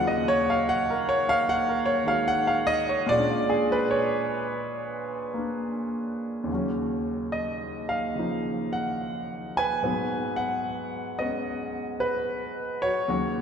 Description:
solo jazz; 74 BPM; 4/4; swing 69% on 8ths, rubato; Eb minor; A4 = 441 Hz
clear grand piano; solo; 0.0-13.4 s; Eb2 to Ab5; -24 LUFS; equal
wet church reverb, RT60 3.2 s; recorded in a church or concert hall; -24 LUFS; side -7 dB against mid
0.0-6.5 A section; 6.5-13.4 B section
grand piano solo 0.0-6.5
0.0 Ebm9; 3.1 Bb7#9; 6.5 Ebm9; 9.8 Abm7

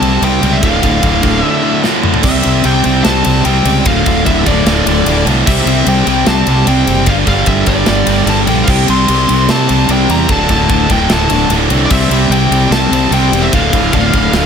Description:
heavy metal; 149 BPM; 4/4; straight; A4 = 439 Hz
high-gain lead guitar; melody; 0.0-14.5 s; D5 to C6; -17 LUFS; left 3 dB; distortion
rich symphonic string section; sustained chords; 0.0-14.5 s; G3 to F5; -28 LUFS; right 1 dB
distorted electric guitar; riff; 0.0-14.5 s; D2 to C4; -18 LUFS; equal; distortion
heavy high-gain guitar; riff; 0.0-14.5 s; D2 to C4; -16 LUFS; right 13 dB; distortion
high-gain distorted guitar; riff; 0.0-14.5 s; D2 to C4; -18 LUFS; left 13 dB; distortion
fuzz fingered electric bass; bass; 0.0-14.5 s; D1 to C3; -15 LUFS; equal; overdrive
tight metal drum kit; drums; 0.0-14.4 s; crash cymbal, kick drum, ride cymbal, snare drum, toms; -17 LUFS; equal
small room reverb; -9 LUFS; side -7 dB against mid
0.0-2.2 A section; 2.2-14.5 A section
half time 0.0-2.2, 2.2-14.5; drum fill 1.8-2.2
0.0 C5; 0.6 Dm; 2.2 C; 3.9 Dm; 5.5 C; 7.1 G5; 8.7 C5; 10.3 D5; 11.9 C; 13.5 Dm

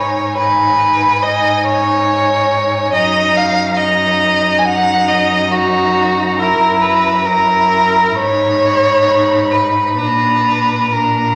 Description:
classical, slow romantic movement for string quartet; 64-72 BPM; 4/4; rubato; Eb minor; A4 = 440 Hz
clear violin; melody; 0.0-11.3 s; Ab5 to Cb6; -24 LUFS; equal
rich violin; second line; 0.0-11.3 s; Gb4 to Ab5; -15 LUFS; equal
clear viola; accompaniment; 0.0-11.3 s; D4 to Fb4; -24 LUFS; equal
clear cello; bass; 0.0-11.3 s; Gb2 to Bb2; -24 LUFS; equal
wet recital hall reverb, RT60 1.9 s; -14 LUFS; mono
0.0-11.3 A section
0.0 Abm; 2.9 Ebm/Gb; 6.4 Gb7; 8.2 Abm; 10.0 Bb

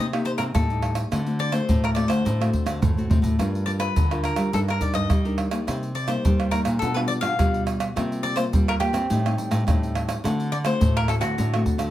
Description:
samba and choro; 105 BPM; 4/4; straight; A4 = 440 Hz
cavaquinho; melody; 0.0-11.9 s; F#4 to F5; -28 LUFS; left 2 dB; plate reverb
nylon-string guitar; accompaniment; 0.0-11.9 s; G2 to Bb4; -27 LUFS; left 2 dB
nylon-string guitar; bass; 0.0-11.9 s; G2 to C4; -26 LUFS; right 1 dB
egg shaker, pandeiro, tamborim and surdo; percussion; 0.1-11.9 s; -25 LUFS; right 1 dB
moderate studio reverb, RT60 0.8 s; -20 LUFS; side -13 dB against mid
0.0-11.9 A section
drum fill 2.7-3.4
0.0 Cm7; 1.1 D7; 3.4 Gm7; 4.5 Ebmaj7/G; 5.7 Cm7; 6.8 G7/B; 8.0 C7sus4; 9.1 Am7b5; 10.2 D7

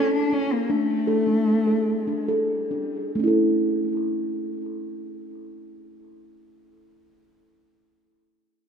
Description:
world meditative; 66-84 BPM; 3/4; straight; A major; A4 = 440 Hz
dark cello; melody; 0.0-2.3 s; A3 to D4; -23 LUFS; left 1 dB; tape echo
steel tongue drum; arpeggios; 0.0-7.3 s; A3 to A4; -23 LUFS; right 1 dB; tape echo
wet echo chamber reverb, RT60 1.9 s, studio reverb; -21 LUFS; side -7 dB against mid
0.0-3.2 A section; 3.2-8.6 B section
slowing down 0.0-3.2
0.0 A; 0.7 D5; 3.2 A

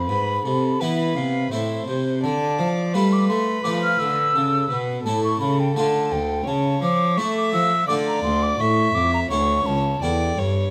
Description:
classical, baroque-style sonata movement with continuo; 85 BPM; 3/4; straight; A minor; A4 = 439 Hz
warm violin; melody; 0.0-10.7 s; A4 to E5; -30 LUFS; equal
hollow concert flute; second line; 0.0-10.4 s; C5 to F6; -26 LUFS; equal
harpsichord; accompaniment; 0.0-10.7 s; C#2 to B4; -29 LUFS; equal
warm cello; bass; 0.0-10.7 s; C#2 to A3; -26 LUFS; equal
light reverb; close, detailed microphones; -21 LUFS; mono
0.0-10.7 A section
0.1 E/G#; 1.5 Am; 2.2 Dm; 4.4 A; 5.8 Dm; 6.5 A/C#; 7.9 Dm; 8.6 A7

